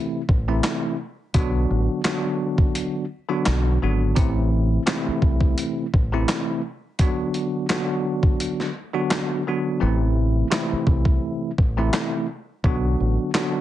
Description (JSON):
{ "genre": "hip hop, boom-bap hip-hop", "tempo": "85 BPM", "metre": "4/4", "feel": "swing 55% on 16ths", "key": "A dorian", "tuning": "A4 = 441 Hz", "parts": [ { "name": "bell-like tine electric piano", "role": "accompaniment", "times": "0.0-13.6 s", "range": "C3 to F#4", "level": "-24 LUFS", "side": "equal", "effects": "fast stereo tremolo, high-pass filter, low-pass filter" }, { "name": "deep dub fingered electric bass", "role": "bass", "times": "0.3-13.2 s", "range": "G#1 to C2", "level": "-22 LUFS", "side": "equal", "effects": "none" }, { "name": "boom bap sampler-style drum kit", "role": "drums", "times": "0.3-13.5 s", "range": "handclaps, hi-hat, kick drum, snare drum", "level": "-22 LUFS", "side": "equal", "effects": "none" } ], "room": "light reverb", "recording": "heavily compressed radio sound, nothing above 10.5 kHz", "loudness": "-20 LUFS", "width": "side -13 dB against mid", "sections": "0.0-13.6 A section", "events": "hi-hats muted 9.8-13.6; kick muted 9.8-10.5", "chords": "0.0 Am; 1.3 Bm; 4.2 Am; 7.0 Bm; 9.8 Am; 12.6 Bm" }